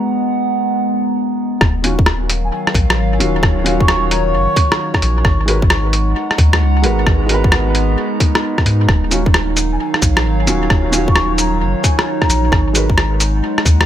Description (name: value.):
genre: future garage.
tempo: 132 BPM.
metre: 4/4.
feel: swing 66% on 16ths.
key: Eb minor.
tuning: A4 = 441 Hz.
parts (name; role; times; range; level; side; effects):
felt-muted upright piano; accompaniment; 0.0-12.8 s; Eb3 to Cb5; -23 LUFS; right 1 dB; sidechain pumping, dub echo.
warbly tape-like pad; sustained chords; 0.0-13.9 s; Eb3 to Bb5; -20 LUFS; right 1 dB; chorus, built-in reverb, sidechain pumping.
soft dub sub bass; bass; 1.6-13.9 s; Eb1 to Ab2; -17 LUFS; equal; sidechain pumping.
electronic kick drum; drums; 1.6-13.8 s; none; -15 LUFS; equal; small room reverb.
lo-fi sampler-style drum kit; drums; 1.6-13.9 s; cabasa, hi-hat, rim click; -18 LUFS; equal; small room reverb, dub echo.
mellow wooden flute; melody; 2.4-4.9, 9.7-12.6 s; Ab5 to Db6; -23 LUFS; equal; dub echo.
room: little or no reverb.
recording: echo-heavy mix.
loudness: -12 LUFS.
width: side -11 dB against mid.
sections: 0.0-1.6 A section; 1.6-13.9 B section.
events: filter sweep on ambient pad 0.0-1.6.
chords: 0.0 Abm9; 1.6 Ebm9; 5.2 Abm9; 8.9 Ebm9; 12.5 Abm9.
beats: 0.25 0.70 1.16 | 1.61 2.07 2.52 2.98 | 3.43 3.89 4.34 4.79 | 5.25 5.70 6.16 6.61 | 7.07 7.52 7.98 8.43 | 8.89 9.34 9.79 10.25 | 10.70 11.16 11.61 12.07 | 12.52 12.98 13.43.